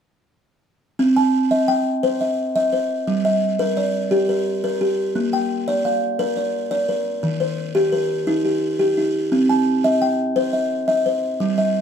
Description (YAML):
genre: southern african traditional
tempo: 115 BPM (dotted quarters)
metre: 12/8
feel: straight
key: C equiheptatonic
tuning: A4 = 438 Hz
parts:
  - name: buzzing kalimba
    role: arpeggios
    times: 1.0-11.8 s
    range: Eb3+43c to A5-43c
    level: -18 LUFS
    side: equal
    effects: none
room: moderate studio reverb, RT60 0.6 s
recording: none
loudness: -18 LUFS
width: side -8 dB against mid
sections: 1.0-11.8 A section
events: none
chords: 1.0 Cm; 3.1 Gm; 5.2 Bb; 7.2 Eb; 9.3 Cm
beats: | 1.00 1.52 2.04 2.56 | 3.08 3.60 4.12 4.64 | 5.16 5.68 6.20 6.72 | 7.24 7.76 8.28 8.80 | 9.32 9.84 10.36 10.88 | 11.40